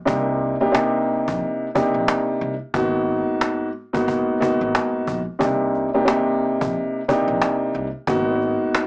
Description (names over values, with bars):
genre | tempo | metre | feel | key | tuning
hip hop, boom-bap hip-hop | 90 BPM | 4/4 | swing 60% on 16ths | C minor | A4 = 445 Hz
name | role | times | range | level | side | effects
dark grand piano | accompaniment | 0.1-8.9 s | Ab2 to G4 | -19 LUFS | equal | cassette tape, high-pass filter, low-pass filter
upright bass | bass | 0.1-8.5 s | G1 to C2 | -31 LUFS | equal | tube saturation
cajon | drums | 0.1-8.9 s | none | -24 LUFS | equal | none
room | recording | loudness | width
light reverb | dry, gritty hardware recording, small speaker sound | -18 LUFS | side -28 dB against mid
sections
0.0-8.9 A section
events
break 0.0-5.4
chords
0.1 Cm9; 2.7 Abm9; 5.4 Cm9; 8.1 Abm9